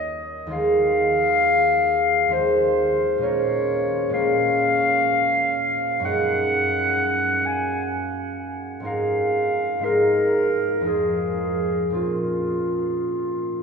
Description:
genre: classical, impressionist duo for clarinet and harp.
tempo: 52-68 BPM.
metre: 3/4.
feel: rubato.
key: Bb minor.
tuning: A4 = 441 Hz.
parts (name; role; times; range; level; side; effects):
mellow clarinet; melody; 0.0-13.6 s; F4 to Ab5; -22 LUFS; left 1 dB; none.
concert harp; accompaniment; 0.0-13.6 s; Eb2 to Bb4; -22 LUFS; equal; none.
room: wet cathedral reverb, RT60 6.8 s.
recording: minimal, uncompressed stereo recording.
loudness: -19 LUFS.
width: side -5 dB against mid.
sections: 0.0-13.6 A section.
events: none.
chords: 0.0 Ebadd9; 0.5 Fm7/Eb; 3.2 Bbm9; 6.0 Gb69; 8.9 Ab69; 12.0 Bbmadd9.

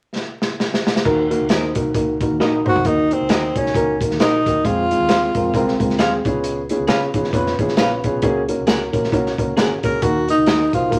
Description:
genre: uptempo 1960s-style soul.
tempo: 134 BPM.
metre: 4/4.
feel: swing 58% on 8ths.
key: Eb dorian.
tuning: A4 = 439 Hz.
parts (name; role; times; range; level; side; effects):
crunchy breakbeat drum kit; drums; 0.2-11.0 s; crash cymbal, hi-hat, kick drum, snare drum, toms; -24 LUFS; equal; none.
dark upright piano; accompaniment; 1.0-11.0 s; Ab3 to Db5; -22 LUFS; equal; none.
vintage muted fingered electric bass; bass; 1.1-11.0 s; F1 to Db3; -32 LUFS; equal; none.
electric guitar through a small old amp; stabs; 1.5-10.6 s; Gb4 to Gb5; -26 LUFS; equal; none.
breathy tenor saxophone; melody; 2.7-6.0, 9.8-11.0 s; C4 to Bb4; -21 LUFS; equal; none.
room: moderate studio reverb, RT60 0.8 s.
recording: vinyl crackle.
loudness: -18 LUFS.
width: mono.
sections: 0.0-1.1 A section; 1.1-2.8 B section; 2.8-11.0 C section.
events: drum fill 0.2-1.1, 2.4-2.8.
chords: 0.0 N.C.; 1.1 Ebm; 4.6 Fm; 6.2 Db7; 8.2 Gbadd9; 10.0 Ebm.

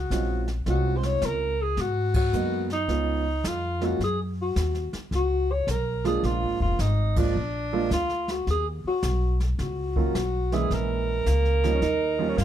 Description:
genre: jazz, small-group swing and bop.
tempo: 108 BPM.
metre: 4/4.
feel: swing 66% on 8ths.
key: Eb minor.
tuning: A4 = 438 Hz.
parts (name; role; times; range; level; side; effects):
clear alto saxophone; melody; 0.0-12.4 s; D4 to Db5; -28 LUFS; equal; none.
upright bass; bass; 0.0-12.4 s; F1 to Ab2; -26 LUFS; left 1 dB; none.
warm baby grand piano; accompaniment; 0.1-12.4 s; Eb3 to Gb4; -29 LUFS; right 6 dB; none.
jazz brush drum kit; drums; 0.1-12.4 s; brushed snare drum, crash cymbal, hi-hat, kick drum, snare drum; -32 LUFS; equal; none.
breathy alto saxophone; second line; 11.3-12.4 s; Bb3 to Eb4; -29 LUFS; right 4 dB; none.
room: light reverb.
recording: dark, warm production.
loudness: -23 LUFS.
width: side -10 dB against mid.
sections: 0.0-12.4 A section.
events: band accent 2.1, 7.1.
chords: 0.0 Dbmaj7; 1.8 Abm7; 2.9 Db7; 4.0 Gbmaj7; 6.2 Bb7; 8.5 Ebm7; 10.7 Bbm7b5; 11.8 Eb7.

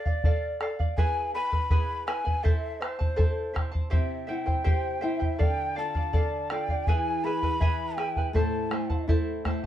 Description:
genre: andean folk, Andean ensemble.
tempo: 81 BPM.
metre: 2/4.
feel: straight.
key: A minor.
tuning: A4 = 439 Hz.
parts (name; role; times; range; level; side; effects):
breathy mellow large quena; melody; 0.0-9.0 s; C5 to B5; -32 LUFS; left 1 dB; plate reverb.
charango; accompaniment; 0.0-9.7 s; E4 to A5; -33 LUFS; equal; none.
bombo; percussion; 0.1-9.7 s; none; -26 LUFS; equal; none.
nylon-string guitar; accompaniment; 3.9-9.7 s; A2 to E5; -33 LUFS; equal; none.
room: light reverb.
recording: dark, warm production.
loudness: -25 LUFS.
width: side -11 dB against mid.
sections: 0.0-9.7 A section.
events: none.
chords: 0.0 Dm; 1.0 E; 2.4 Am; 3.9 C; 5.4 Dm; 6.9 E; 8.3 Am.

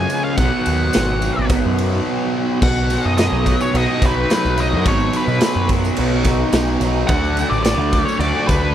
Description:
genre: psychedelic rock.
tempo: 107 BPM.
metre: 4/4.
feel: straight.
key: unclear.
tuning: A4 = 441 Hz.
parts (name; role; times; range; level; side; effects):
octave-fuzz lead guitar; melody; 0.0-8.7 s; B4 to G#5; -22 LUFS; left 1 dB; distortion, slapback echo.
tonewheel organ; sustained chords; 0.0-8.7 s; E#3 to F#4; -29 LUFS; right 6 dB; none.
fuzz guitar; riff; 0.0-8.7 s; B2 to F#4; -20 LUFS; equal; distortion, phaser.
growling picked electric bass; bass; 0.0-8.7 s; G#1 to B2; -20 LUFS; equal; overdrive.
raw garage drum kit; drums; 0.1-8.6 s; crash cymbal, kick drum, ride cymbal, snare drum; -21 LUFS; equal; none.
tambourine; percussion; 0.1-8.6 s; none; -38 LUFS; right 8 dB; none.
room: little or no reverb.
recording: none.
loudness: -15 LUFS.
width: side -10 dB against mid.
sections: 0.0-2.6 A section; 2.6-8.7 B section.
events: break 2.1-2.6.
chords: 0.4 B; 7.1 D.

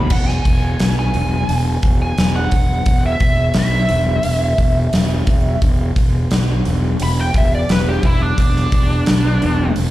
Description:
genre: blues rock power trio and southern rock.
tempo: 87 BPM.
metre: 4/4.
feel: straight.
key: E mixolydian.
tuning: A4 = 440 Hz.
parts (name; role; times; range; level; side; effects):
dark smooth lead guitar; melody; 0.0-9.7 s; D4 to B5; -21 LUFS; right 1 dB; wah, overdrive, slapback echo.
fuzz fingered electric bass; bass; 0.0-9.9 s; E1 to B1; -18 LUFS; equal; overdrive.
huge arena drum kit; drums; 0.1-9.9 s; crash cymbal, hi-hat, kick drum, snare drum; -17 LUFS; equal; none.
room: light reverb.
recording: live gig heard through the venue's PA, club reverb.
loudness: -14 LUFS.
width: side -15 dB against mid.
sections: 0.1-9.9 A section.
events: lead electric guitar solo 0.1-9.9.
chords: 0.1 E.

